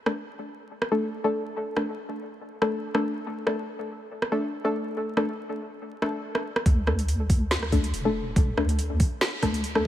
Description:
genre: deep dubstep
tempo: 141 BPM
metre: 4/4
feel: swing 54% on 16ths, half-time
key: unclear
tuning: A4 = 439 Hz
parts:
  - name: filtered dub chord stab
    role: stabs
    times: 0.1-9.9 s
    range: A3 to A4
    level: -28 LUFS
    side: left 2 dB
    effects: chorus, dub echo
  - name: garage drum kit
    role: drums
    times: 0.1-9.8 s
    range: hi-hat, rim click, snare drum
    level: -29 LUFS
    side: right 1 dB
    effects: overdrive, small room ambience
  - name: deep soft wobble bass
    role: bass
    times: 6.7-9.9 s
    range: E1 to D2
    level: -27 LUFS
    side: equal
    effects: chorus
  - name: electronic kick drum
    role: drums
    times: 6.7-9.5 s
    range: none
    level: -22 LUFS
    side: equal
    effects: overdrive, small room ambience
room: light reverb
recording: vinyl crackle, high-pass filter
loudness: -24 LUFS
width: side -12 dB against mid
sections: 0.0-6.7 A section; 6.7-9.9 B section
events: filter sweep on synth stab 0.0-6.7, 6.7-9.9; build-up 6.7-9.9; filter sweep 6.7-9.9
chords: 0.0 D5

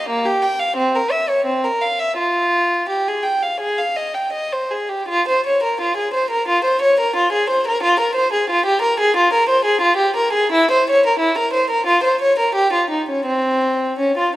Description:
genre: classical, baroque-style suite movement for unaccompanied violin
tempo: 78-91 BPM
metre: 4/4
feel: rubato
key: F minor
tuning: A4 = 438 Hz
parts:
  - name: rich violin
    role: solo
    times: 0.0-14.3 s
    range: Bb3 to G5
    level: -15 LUFS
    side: equal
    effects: none
room: moderate concert hall reverb, RT60 2.4 s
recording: vinyl crackle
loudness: -15 LUFS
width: side -16 dB against mid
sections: 0.0-5.1 A section; 5.1-14.4 B section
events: none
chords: none

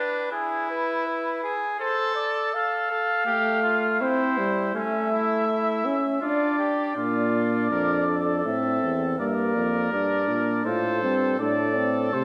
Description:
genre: classical, imitative canzona for brass ensemble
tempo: 82 BPM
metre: 3/4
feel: straight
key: unclear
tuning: A4 = 440 Hz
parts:
  - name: warm cornet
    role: melody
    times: 0.0-12.2 s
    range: G#4 to F5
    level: -29 LUFS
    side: equal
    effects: none
  - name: clear trumpet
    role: second line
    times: 0.0-12.2 s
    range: C#4 to Bb4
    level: -31 LUFS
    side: equal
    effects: none
  - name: mellow trombone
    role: accompaniment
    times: 3.3-12.2 s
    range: G3 to F4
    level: -28 LUFS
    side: equal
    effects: none
  - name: dark euphonium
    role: bass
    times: 7.0-12.2 s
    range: E2 to C3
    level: -30 LUFS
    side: equal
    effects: none
room: moderate scoring stage reverb, RT60 1.8 s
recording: none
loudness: -25 LUFS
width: mono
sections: 0.0-7.0 A section; 7.0-12.2 B section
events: none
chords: 0.3 E; 1.8 Am; 2.5 Fadd9/A; 4.0 C; 4.7 A; 6.2 Dm; 7.0 Bb; 8.5 Am; 9.2 Gm; 10.7 F/A; 11.4 Amadd11

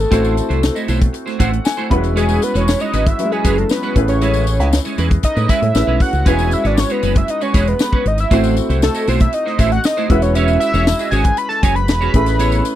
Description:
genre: polished 1980s jazz-funk pop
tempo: 117 BPM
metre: 4/4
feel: straight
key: E major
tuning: A4 = 441 Hz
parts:
  - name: fat analog lead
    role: melody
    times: 0.0-12.8 s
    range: G#4 to B5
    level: -20 LUFS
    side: equal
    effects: chorus
  - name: clear baby grand piano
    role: accompaniment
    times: 0.0-12.8 s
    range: F#3 to B5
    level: -21 LUFS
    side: left 1 dB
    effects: analog chorus
  - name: fingered electric bass with an envelope filter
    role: bass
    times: 0.0-12.6 s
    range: E1 to A2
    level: -17 LUFS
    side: equal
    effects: none
  - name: tambourine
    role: percussion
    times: 0.0-12.8 s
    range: none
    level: -32 LUFS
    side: left 25 dB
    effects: none
  - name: clean electric guitar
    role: riff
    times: 0.1-12.7 s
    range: G#3 to D#5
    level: -22 LUFS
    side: right 6 dB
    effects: ensemble chorus
  - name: tight funk drum kit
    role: drums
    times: 0.1-12.8 s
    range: hi-hat, kick drum, snare drum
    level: -17 LUFS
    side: equal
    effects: none
room: little or no reverb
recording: dry, close 1970s-style studio recording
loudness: -13 LUFS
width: side -12 dB against mid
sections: 0.0-12.8 A section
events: analog synth lead solo 0.0-12.8; grand piano fill 1.1-2.2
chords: 0.1 Am6; 1.9 E69; 4.0 Amaj9; 6.3 E69; 8.3 Am6; 10.1 E69; 12.1 Amaj9

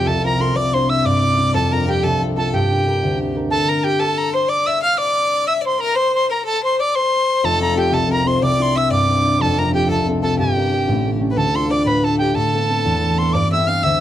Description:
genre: celtic folk, Celtic jig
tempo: 122 BPM (dotted quarters)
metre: 6/8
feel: straight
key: unclear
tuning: A4 = 440 Hz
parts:
  - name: bright reedy tin whistle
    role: melody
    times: 0.0-14.0 s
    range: G5 to F6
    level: -20 LUFS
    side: right 2 dB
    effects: none
  - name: clear fiddle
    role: second line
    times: 0.0-14.0 s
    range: G4 to F5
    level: -21 LUFS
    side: left 4 dB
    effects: none
  - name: concert harp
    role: accompaniment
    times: 0.0-14.0 s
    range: F1 to C5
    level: -19 LUFS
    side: equal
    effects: none
room: small room ambience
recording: dry, close 1970s-style studio recording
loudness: -15 LUFS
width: side -11 dB against mid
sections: 0.0-3.5 A section; 3.5-11.4 A section; 11.4-14.0 B section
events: none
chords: 0.0 F; 0.6 Cadd9; 1.5 F; 2.5 Gm; 3.5 N.C.; 6.5 F; 8.4 Cadd9; 9.4 F; 10.4 Gm; 10.9 A7; 11.4 Dm; 12.4 Amadd9; 13.3 G

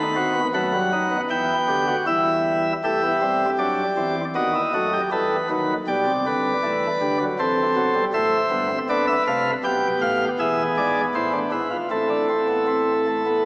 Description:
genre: classical, baroque-style 4-part fugue for pipe organ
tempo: 79 BPM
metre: 4/4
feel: straight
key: unclear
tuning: A4 = 440 Hz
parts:
  - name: chamber organ, principal chorus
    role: solo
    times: 0.0-13.5 s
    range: E1 to B5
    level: -19 LUFS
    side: equal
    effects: none
room: wet church reverb, RT60 2.8 s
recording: small speaker sound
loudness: -19 LUFS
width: side -25 dB against mid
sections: 0.0-2.8 A section; 2.8-13.5 B section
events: none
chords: 0.0 B7/D#; 1.3 Em; 4.4 B7/D#; 5.9 Em/B; 7.4 Am; 8.9 Bm7b5; 10.4 E7; 11.9 Am

